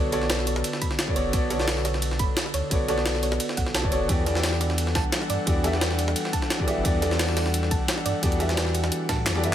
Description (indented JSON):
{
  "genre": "liquid drum and bass",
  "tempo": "174 BPM",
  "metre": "4/4",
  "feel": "straight",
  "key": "unclear",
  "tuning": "A4 = 440 Hz",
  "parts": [
    { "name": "warm concert grand piano", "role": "accompaniment", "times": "0.0-9.5 s", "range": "E3 to E5", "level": "-28 LUFS", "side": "equal", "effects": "dub echo" },
    { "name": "airy breathy pad", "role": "sustained chords", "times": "0.0-9.5 s", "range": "D3 to F#5", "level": "-33 LUFS", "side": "left 1 dB", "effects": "chorus, sidechain pumping" },
    { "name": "warm sub bass", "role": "bass", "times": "0.0-9.5 s", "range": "E1 to A2", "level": "-28 LUFS", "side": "equal", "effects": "none" },
    { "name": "thumb-piano-like synth pluck", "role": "arpeggios", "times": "0.1-9.5 s", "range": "A4 to B5", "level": "-34 LUFS", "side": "right 5 dB", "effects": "chorus, ping-pong delay" },
    { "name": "jungle sampler-style drum kit", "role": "drums", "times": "0.1-9.5 s", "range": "handclaps, hi-hat, snare drum", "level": "-29 LUFS", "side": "left 1 dB", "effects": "studio reverb" },
    { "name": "jungle sampler-style drum kit", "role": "drums", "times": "0.1-9.5 s", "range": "hi-hat, ride cymbal, snare drum", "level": "-32 LUFS", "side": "right 1 dB", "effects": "high-pass filter on cymbals, studio reverb, high-pass filter on snare, high-pass filter on hats" },
    { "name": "electronic kick drum", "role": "drums", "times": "0.8-9.2 s", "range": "none", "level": "-27 LUFS", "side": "equal", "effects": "studio reverb" }
  ],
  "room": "light reverb, digital ambience",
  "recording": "none",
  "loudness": "-22 LUFS",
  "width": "side -10 dB against mid",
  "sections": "0.0-9.5 A section",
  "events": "kick drops out 9.3; drum fill 9.3",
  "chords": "0.0 Bm9; 4.1 Em11"
}